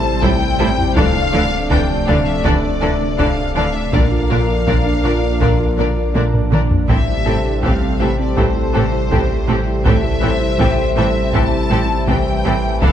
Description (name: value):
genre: cinematic, hybrid orchestral and electronic film score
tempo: 81 BPM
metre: 4/4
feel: straight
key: A phrygian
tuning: A4 = 440 Hz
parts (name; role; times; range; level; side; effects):
- rich studio violin section; melody; 0.0-12.9 s; C5 to A5; -24 LUFS; left 4 dB; none
- bright trombone section; sustained chords; 0.0-12.9 s; C3 to D4; -27 LUFS; right 4 dB; none
- dark analog pad; sustained chords; 0.0-12.9 s; C3 to E5; -23 LUFS; equal; chorus
- warm French horn section; sustained chords; 0.0-12.9 s; E3 to C5; -25 LUFS; left 4 dB; none
- harp-like synth pluck; arpeggios; 0.0-12.9 s; D3 to Bb4; -27 LUFS; right 2 dB; chorus, digital delay
- pure sine sub bass; bass; 0.0-12.9 s; D1 to Bb1; -22 LUFS; equal; none
- clear baby grand piano; texture; 0.0-12.8 s; D4 to A5; -33 LUFS; left 2 dB; none
- rich symphonic violin section; second line; 0.2-12.9 s; E4 to D5; -25 LUFS; left 3 dB; none
- rich symphonic viola section; accompaniment; 0.2-12.9 s; D3 to E4; -25 LUFS; right 1 dB; none
- rich symphonic cello section; bass; 0.2-12.9 s; A2 to D3; -25 LUFS; right 3 dB; none
- warm symphonic double bass section; bass; 0.2-12.9 s; A1 to D2; -23 LUFS; right 3 dB; none
- solo taiko drums; drums; 0.2-12.9 s; none; -20 LUFS; equal; none
room: moderate scoring stage reverb, RT60 1.9 s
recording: dark, warm production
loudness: -14 LUFS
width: side -10 dB against mid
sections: 0.0-12.9 A section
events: drum fill 6.1-6.9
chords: 0.0 Am7; 1.0 Dmadd9; 3.9 Bb; 6.9 Am7